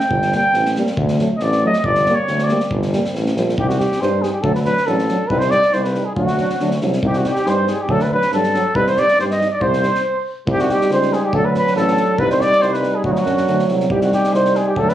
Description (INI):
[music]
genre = balkan folk, Balkan brass band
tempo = 139 BPM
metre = 2/4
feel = straight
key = G hungarian minor, C hungarian minor from 3.6 s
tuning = A4 = 440 Hz
[part]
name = mellow trumpet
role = second line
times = 0.0-2.6, 6.2-14.9 s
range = Eb4 to G5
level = -22 LUFS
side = equal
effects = none
[part]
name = compact cocktail drum kit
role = percussion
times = 0.0-14.9 s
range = kick drum, snare drum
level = -27 LUFS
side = equal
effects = none
[part]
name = clear tuba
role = bass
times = 0.1-14.9 s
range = G1 to G2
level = -21 LUFS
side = equal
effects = none
[part]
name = warm euphonium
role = accompaniment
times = 0.3-14.9 s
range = A3 to Eb4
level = -25 LUFS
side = left 4 dB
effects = none
[part]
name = warm euphonium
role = accompaniment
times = 0.3-14.9 s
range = F#3 to G3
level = -22 LUFS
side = right 3 dB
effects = none
[part]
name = dark trumpet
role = melody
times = 3.6-14.9 s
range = Eb4 to Eb5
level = -18 LUFS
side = equal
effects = none
[sound]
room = light reverb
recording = recorded on a phone in the room, club reverb, compression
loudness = -15 LUFS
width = side -12 dB against mid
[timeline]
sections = 0.0-3.6 A section; 3.6-10.5 B section; 10.5-14.9 B section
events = trumpet solo 0.0-3.6; stop 10.0-10.5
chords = 0.1 Gm; 1.0 D; 1.8 Gm; 3.6 Cm; 4.4 D; 5.3 Cm; 6.2 D; 7.0 Cm; 7.9 D; 8.8 Cm; 11.3 D; 12.2 Cm; 13.0 D; 13.9 Cm